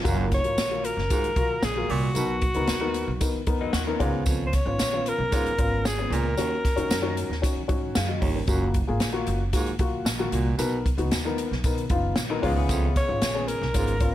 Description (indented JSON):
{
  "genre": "uptempo 1960s-style soul",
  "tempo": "114 BPM",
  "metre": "4/4",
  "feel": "straight",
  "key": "F# major",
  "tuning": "A4 = 440 Hz",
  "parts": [
    { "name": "dark upright piano", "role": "accompaniment", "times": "0.0-14.1 s", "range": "A#3 to E#5", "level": "-30 LUFS", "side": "left 4 dB", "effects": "none" },
    { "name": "upright bass", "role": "bass", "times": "0.0-14.1 s", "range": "F#1 to B2", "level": "-29 LUFS", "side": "right 1 dB", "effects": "none" },
    { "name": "mellow baritone saxophone", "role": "riff", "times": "0.1-14.0 s", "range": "D#2 to B2", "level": "-31 LUFS", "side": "right 5 dB", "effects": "none" },
    { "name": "swinging big-band drum kit", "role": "drums", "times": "0.1-14.1 s", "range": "hi-hat, kick drum, snare drum", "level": "-27 LUFS", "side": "equal", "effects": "none" },
    { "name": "tambourine", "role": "percussion", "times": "0.1-13.9 s", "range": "none", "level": "-37 LUFS", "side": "right 6 dB", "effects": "none" },
    { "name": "breathy alto saxophone", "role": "melody", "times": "0.3-7.7, 13.0-14.1 s", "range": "F#4 to C#5", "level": "-28 LUFS", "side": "left 1 dB", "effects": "plate reverb" },
    { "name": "electric guitar through a small old amp", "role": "riff", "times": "3.6-4.1, 12.3-13.3 s", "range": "F#3 to A#4", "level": "-34 LUFS", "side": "left 7 dB", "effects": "spring reverb" }
  ],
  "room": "light reverb",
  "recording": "none",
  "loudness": "-22 LUFS",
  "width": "side -13 dB against mid",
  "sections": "0.1-14.1 A section",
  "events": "none",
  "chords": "0.1 F#maj7; 2.2 Bmaj7; 4.0 C#7; 6.4 D#m7; 8.5 F#maj7; 10.6 Bmaj7; 12.4 C#7"
}